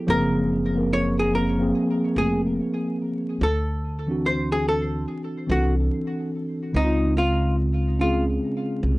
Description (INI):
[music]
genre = lo-fi hip hop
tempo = 72 BPM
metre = 4/4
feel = swing 62% on 16ths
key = Db major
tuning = A4 = 440 Hz
[part]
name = mellow tine electric piano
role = accompaniment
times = 0.0-9.0 s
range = Db3 to Bb4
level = -24 LUFS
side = equal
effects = medium stereo tremolo, cassette tape
[part]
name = archtop guitar, miked and amplified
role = melody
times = 0.1-8.2 s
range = Eb4 to Db5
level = -26 LUFS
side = equal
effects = tape echo
[part]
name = upright bass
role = bass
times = 0.1-9.0 s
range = F1 to D2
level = -24 LUFS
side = equal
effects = tube saturation
[sound]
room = light reverb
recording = dry, gritty hardware recording, vinyl crackle, nothing above 10.9 kHz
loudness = -21 LUFS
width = side -20 dB against mid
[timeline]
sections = 0.0-6.7 A section; 6.7-9.0 B section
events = none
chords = 0.1 Gbmaj9#11; 3.4 D9; 6.7 Dbmaj7